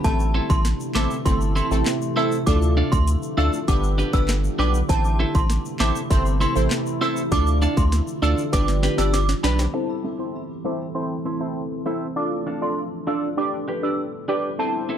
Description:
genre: dancehall.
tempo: 99 BPM.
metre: 4/4.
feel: straight.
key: A minor.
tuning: A4 = 440 Hz.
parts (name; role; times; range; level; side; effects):
synth chime; melody; 0.0-14.8 s; A5 to E6; -29 LUFS; right 3 dB; ensemble chorus, tremolo, low-pass filter, ping-pong delay.
synth brass stab; accompaniment; 0.0-15.0 s; A3 to D5; -27 LUFS; equal; chorus, phaser, low-pass filter.
deep dark ambient pad; sustained chords; 0.0-15.0 s; C3 to C5; -29 LUFS; right 1 dB; chorus, built-in reverb, sidechain pumping, low-pass filter.
saturated sub bass; bass; 0.0-9.7 s; G1 to D2; -21 LUFS; equal; none.
island pop drum kit; drums; 0.0-9.7 s; handclaps, hi-hat, kick drum, snare drum; -23 LUFS; equal; none.
egg shaker and timbales; percussion; 0.0-9.7 s; none; -40 LUFS; left 7 dB; none.
twelve-string electric guitar; arpeggios; 0.3-15.0 s; C4 to B4; -28 LUFS; right 2 dB; low-pass filter.
room: digital ambience.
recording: dark, warm production.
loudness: -20 LUFS.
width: side -9 dB against mid.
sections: 0.0-9.7 A section; 9.7-15.0 B section.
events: drum fill 8.5-9.7; filter sweep 9.7-15.0.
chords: 0.0 Am; 2.5 Dm; 3.7 G; 4.9 Am; 7.3 Dm; 8.5 G; 9.7 Am; 12.2 Dm; 13.4 G.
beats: | 0.04 0.65 1.26 1.86 | 2.47 3.08 3.68 4.29 | 4.89 5.50 6.11 6.71 | 7.32 7.92 8.53 9.14 | 9.74 10.35 10.95 11.56 | 12.17 12.77 13.38 13.98 | 14.59.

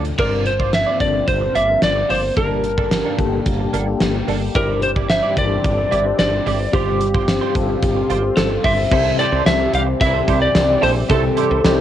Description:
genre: 1980s-style pop.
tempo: 110 BPM.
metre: 4/4.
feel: straight.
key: unclear.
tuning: A4 = 441 Hz.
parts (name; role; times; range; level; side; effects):
FM electric piano with tremolo; accompaniment; 0.0-11.8 s; G2 to A5; -25 LUFS; left 8 dB; cassette tape, plate reverb.
direct-recorded clean electric guitar; riff; 0.0-11.8 s; Bb3 to D5; -26 LUFS; right 9 dB; ensemble chorus, cassette tape.
woody fretless electric bass; bass; 0.0-11.8 s; G1 to D2; -22 LUFS; equal; none.
gated 80s drum kit; drums; 0.0-11.8 s; crash cymbal, hi-hat, kick drum, snare drum, tambourine; -21 LUFS; equal; cassette tape.
lightly driven lead guitar; melody; 0.2-11.8 s; G4 to F5; -19 LUFS; equal; cassette tape, analog delay, plate reverb.
phased analog pad; sustained chords; 0.5-11.8 s; D3 to G4; -27 LUFS; equal; phaser, chorus, cassette tape, plate reverb.
warm horn section; stabs; 9.2-11.8 s; E3 to C5; -26 LUFS; right 8 dB; cassette tape, plate reverb.
room: wet booth ambience, RT60 0.2 s.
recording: home recording on cassette.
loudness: -15 LUFS.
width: side -11 dB against mid.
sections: 0.2-8.9 A section; 8.9-11.8 B section.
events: none.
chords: 0.2 Bbadd9/G; 2.4 Gmadd9; 4.6 Cadd9/G; 6.7 Fsus2/G; 8.9 C6.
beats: | 0.19 0.73 1.28 1.82 | 2.37 2.92 3.46 4.01 | 4.55 5.10 5.64 6.19 | 6.73 7.28 7.83 8.37 | 8.92 9.46 10.01 10.55 | 11.10 11.64.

